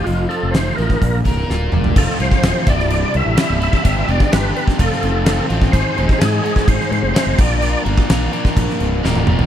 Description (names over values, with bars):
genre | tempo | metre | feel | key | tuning
classic rock | 127 BPM | 4/4 | straight | unclear | A4 = 445 Hz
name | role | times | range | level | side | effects
overdriven tonewheel organ | melody | 0.0-7.8 s | F4 to E5 | -22 LUFS | equal | chorus vibrato, fast rotary speaker
overdriven electric guitar | riff | 0.0-9.5 s | C2 to Bb4 | -21 LUFS | equal | none
fuzz fingered electric bass | bass | 0.1-9.5 s | C1 to Ab2 | -19 LUFS | equal | overdrive
gated 80s drum kit | drums | 0.1-9.5 s | crash cymbal, hi-hat, kick drum, snare drum, toms | -17 LUFS | equal | none
room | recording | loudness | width
studio reverb | none | -14 LUFS | side -10 dB against mid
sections
0.0-2.0 A section; 2.0-9.5 B section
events
drum fill 1.5-2.0, 9.0-9.5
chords
0.0 F; 1.0 Bb; 2.0 F; 2.7 C; 3.8 G; 4.8 F; 5.7 Ab; 7.4 Bb